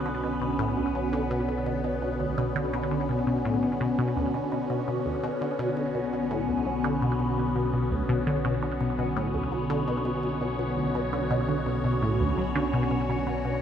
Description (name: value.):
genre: ambient, sequencer-driven space music.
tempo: 84 BPM.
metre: 4/4.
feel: straight.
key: B minor.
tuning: A4 = 441 Hz.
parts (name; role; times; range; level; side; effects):
phased analog pad; sustained chords; 0.0-13.6 s; D3 to C#5; -28 LUFS; equal; phaser, chorus, shimmer reverb.
analog drone; bass; 0.0-13.6 s; B1; -35 LUFS; equal; chorus.
resonant blip pluck; riff; 0.1-13.5 s; D2 to F#3; -29 LUFS; equal; phaser, tape echo.
room: wet plate reverb, RT60 2.4 s.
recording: none.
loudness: -25 LUFS.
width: side -9 dB against mid.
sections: 0.0-13.6 A section.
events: none.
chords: 0.0 Bmadd9.